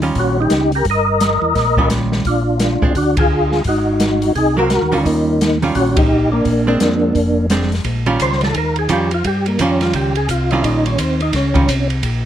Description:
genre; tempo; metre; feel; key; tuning
soul jazz organ trio; 172 BPM; 4/4; swing 62% on 8ths; Eb mixolydian; A4 = 440 Hz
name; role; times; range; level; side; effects
archtop guitar, miked and amplified; accompaniment; 0.0-11.7 s; Eb3 to F4; -19 LUFS; right 4 dB; none
tonewheel organ; bass; 0.0-12.3 s; F1 to G2; -19 LUFS; equal; none
open jazz drum kit; drums; 0.0-12.1 s; hi-hat, kick drum, ride cymbal, snare drum; -21 LUFS; equal; none
percussive tonewheel organ; melody; 0.2-11.9 s; Bb3 to Eb5; -16 LUFS; equal; chorus vibrato, fast rotary speaker
room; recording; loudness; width
little or no reverb; close, detailed microphones; -13 LUFS; side -10 dB against mid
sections
0.0-7.8 A section; 7.8-12.3 B section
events
band accent 3.1, 5.9; tonewheel organ solo 7.8-12.3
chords
0.0 Eb9; 2.3 Bb7; 3.7 Ab9; 5.1 Eb9; 6.5 Bb9; 7.8 Eb9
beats
0.16 0.51 | 0.85 1.21 1.55 1.90 | 2.25 2.60 2.95 3.30 | 3.65 4.00 4.35 4.70 | 5.05 5.40 5.75 6.10 | 6.45 6.80 7.15 7.50 | 7.85 8.20 8.55 8.90 | 9.25 9.60 9.94 10.29 | 10.64 10.99 11.34 11.69 | 12.04

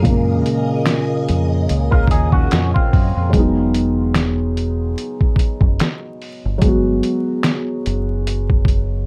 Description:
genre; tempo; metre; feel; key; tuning
lo-fi hip hop; 73 BPM; 4/4; swing 55% on 16ths; E major; A4 = 440 Hz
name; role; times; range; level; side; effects
felt-muted upright piano; accompaniment; 0.0-9.1 s; A#2 to F#4; -22 LUFS; equal; none
phased string machine; sustained chords; 0.0-3.3 s; G#4 to G#5; -32 LUFS; equal; ensemble chorus, phaser, plate reverb
deep dub fingered electric bass; bass; 0.0-9.1 s; E1 to F#2; -22 LUFS; equal; none
lo-fi sampler-style drum kit; drums; 0.0-8.9 s; finger snaps, hi-hat, kick drum, snare drum; -19 LUFS; equal; none
electric guitar with an envelope filter; second line; 1.9-3.3 s; C4 to A#4; -27 LUFS; equal; lush chorus, analog delay
room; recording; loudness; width
moderate small room reverb, RT60 0.5 s; dark, warm production, vinyl crackle; -17 LUFS; mono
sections
0.0-3.3 A section; 3.3-9.1 B section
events
none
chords
0.0 F#maj9; 3.3 Emaj9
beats
| 0.05 0.87 1.70 2.52 | 3.34 4.16 4.98 5.80 | 6.63 7.45 8.27

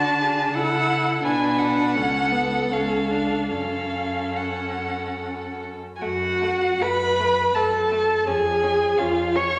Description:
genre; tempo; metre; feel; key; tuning
classical, slow romantic movement for string quartet; 69-87 BPM; 3/4; rubato; F# minor; A4 = 437 Hz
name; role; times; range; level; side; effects
rich violin; melody; 0.0-9.6 s; E#5 to C#6; -27 LUFS; equal; none
rich violin; second line; 0.0-9.4 s; A3 to B4; -33 LUFS; equal; none
warm viola; accompaniment; 0.0-9.6 s; B3 to C#5; -26 LUFS; equal; none
rich cello; bass; 0.0-9.6 s; C#2 to D3; -33 LUFS; equal; none
room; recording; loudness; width
wet recital hall reverb, RT60 1.4 s; none; -23 LUFS; mono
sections
0.0-6.0 A section; 6.0-9.6 B section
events
none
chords
0.0 D; 1.2 G#dim/B; 1.9 F#m/C#; 2.7 C#; 3.5 F#m; 8.3 C#/E#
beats
0.55 | 1.24 1.94 2.71 | 3.50 4.35 5.19 | 6.02 6.82 7.57 | 8.29 9.00

